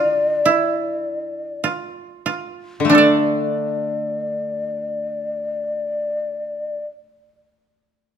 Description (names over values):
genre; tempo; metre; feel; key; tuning
japanese traditional, Japanese chamber music; 46-56 BPM; 4/4; rubato; D minor; A4 = 443 Hz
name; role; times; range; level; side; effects
breathy mellow shakuhachi; melody; 0.0-6.8 s; D5; -22 LUFS; left 2 dB; none
koto; second line; 0.0-6.9 s; D4 to D5; -20 LUFS; right 7 dB; none
koto; accompaniment; 0.0-6.9 s; D3 to D4; -22 LUFS; left 4 dB; none
room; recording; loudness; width
light reverb; close, detailed microphones; -19 LUFS; side -8 dB against mid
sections
0.0-2.9 A section; 2.9-7.9 B section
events
slowing down 0.0-2.9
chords
none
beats
0.46 1.63 | 2.91 4.19 5.42 6.64